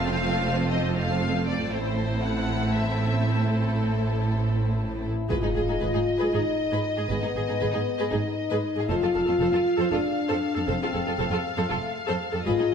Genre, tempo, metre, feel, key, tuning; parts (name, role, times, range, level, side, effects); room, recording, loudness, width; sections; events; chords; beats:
cinematic; 234 BPM (eighths); 7/8; straight; A4 = 441 Hz
rich symphonic violin section; melody; 0.0-12.7 s; A4 to F#5; -32 LUFS; left 3 dB
clear symphonic violin section; second line; 0.0-12.7 s; Eb4 to C5; -35 LUFS; left 3 dB
rich studio viola section; accompaniment; 0.0-12.6 s; A3 to A4; -31 LUFS; right 2 dB
rich symphonic cello section; bass; 0.0-12.7 s; F2 to A2; -31 LUFS; right 3 dB
rich symphonic double bass section; bass; 0.0-12.5 s; F1 to A1; -29 LUFS; right 2 dB
dark French horn section; sustained chords; 4.5-12.7 s; A3 to F4; -26 LUFS; left 2 dB
impact; sound effects; 5.3-7.1 s; -35 LUFS; equal
wet scoring stage reverb, RT60 1.6 s; -23 LUFS; side -7 dB against mid
0.0-5.3 A section; 5.3-12.7 B section
impact 5.3-7.1
0.0 F; 1.7 Am; 5.3 Abm; 8.9 F
0.19 0.45 0.70 0.96 1.22 1.47 | 1.73 1.98 2.24 2.50 2.75 3.01 3.26 | 3.52 3.78 4.03 4.29 4.54 4.80 5.05 | 5.31 5.57 5.82 6.08 6.33 6.59 6.85 | 7.10 7.36 7.61 7.87 8.13 8.38 8.64 | 8.89 9.15 9.40 9.66 9.92 10.17 10.43 | 10.68 10.94 11.20 11.45 11.71 11.96 12.22 | 12.47 12.73